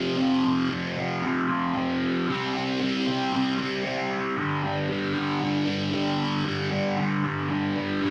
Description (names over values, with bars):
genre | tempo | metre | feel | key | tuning
rock | 115 BPM | 4/4 | straight | unclear | A4 = 440 Hz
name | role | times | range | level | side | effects
fuzz guitar | solo | 0.0-8.1 s | F2 to C4 | -26 LUFS | equal | distortion, phaser
room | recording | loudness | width
wet small room reverb, RT60 0.6 s | none | -26 LUFS | mono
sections
0.0-8.1 A section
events
none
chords
0.0 F5; 2.3 C5; 4.4 G5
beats
| 0.19 0.71 1.24 1.76 | 2.28 2.81 3.33 3.85 | 4.37 4.90 5.42 5.94 | 6.46 6.99 7.51 8.03